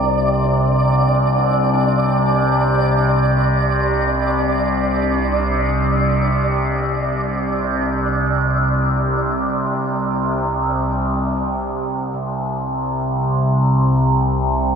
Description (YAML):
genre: dark ambient drone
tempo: free time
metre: none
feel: none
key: unclear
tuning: A4 = 443 Hz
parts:
  - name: overtone-sweeping drone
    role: drone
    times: 0.0-14.8 s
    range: C2 to C3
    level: -16 LUFS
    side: equal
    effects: chorus, built-in reverb, phaser
  - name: flickering grainy texture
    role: texture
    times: 0.0-11.1 s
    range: D5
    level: -23 LUFS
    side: right 2 dB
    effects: built-in reverb
  - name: gamelan-type bossed gongs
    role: arpeggios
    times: 12.1-14.8 s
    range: none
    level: barely audible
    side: none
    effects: none
room: wet huge ambient reverb, RT60 9.2 s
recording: none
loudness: -16 LUFS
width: side -6 dB against mid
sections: 0.0-11.0 A section; 11.0-14.8 B section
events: none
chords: 0.0 Csus2; 11.0 N.C.